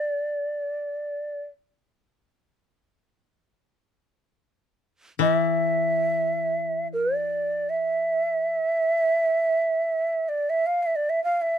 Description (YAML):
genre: japanese traditional, Japanese chamber music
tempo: free time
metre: none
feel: none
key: unclear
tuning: A4 = 440 Hz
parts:
  - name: breathy shakuhachi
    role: melody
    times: 0.0-11.6 s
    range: D5 to F5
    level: -23 LUFS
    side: right 2 dB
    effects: none
  - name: koto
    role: accompaniment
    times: 5.2-8.6 s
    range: E3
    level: -28 LUFS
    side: left 7 dB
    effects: none
room: light reverb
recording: close, detailed microphones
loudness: -22 LUFS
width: side -9 dB against mid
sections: 0.0-11.6 A section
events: none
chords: none